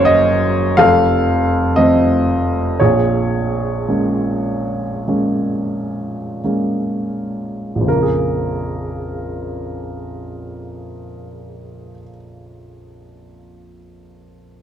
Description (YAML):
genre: classical, lyrical solo piano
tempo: 41-64 BPM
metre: 4/4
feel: rubato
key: Bb minor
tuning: A4 = 440 Hz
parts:
  - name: warm upright piano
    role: solo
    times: 0.0-14.6 s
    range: F1 to F5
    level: -15 LUFS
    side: equal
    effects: none
room: light reverb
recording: dark, warm production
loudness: -15 LUFS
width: side -9 dB against mid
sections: 0.0-7.9 A section; 7.9-13.3 B section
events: slowing down 0.0-7.9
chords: 0.0 Gb; 0.8 F; 2.8 Bbm7